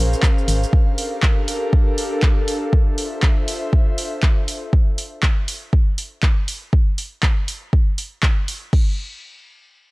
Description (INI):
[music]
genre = deep house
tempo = 120 BPM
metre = 4/4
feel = swing 58% on 16ths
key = unclear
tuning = A4 = 440 Hz
[part]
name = airy breathy pad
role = sustained chords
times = 0.0-4.7 s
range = Db4 to F5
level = -25 LUFS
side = left 1 dB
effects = chorus, sidechain pumping
[part]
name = organ-like FM bass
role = bass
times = 0.0-0.6 s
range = Ab1 to Bb1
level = -17 LUFS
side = equal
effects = sidechain pumping
[part]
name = punchy analog drum machine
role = drums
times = 0.1-8.8 s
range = crash cymbal, handclaps, hi-hat, shaker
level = -26 LUFS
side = equal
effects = none
[part]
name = electronic kick drum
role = drums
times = 0.2-8.8 s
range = none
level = -16 LUFS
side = equal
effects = none
[sound]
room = little or no reverb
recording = dry, gritty hardware recording, cassette tape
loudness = -17 LUFS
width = side -23 dB against mid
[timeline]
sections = 0.0-8.7 A section; 8.7-9.9 B section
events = none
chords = 0.0 Bbm9; 0.7 Gm9; 2.7 Dm9; 4.7 N.C.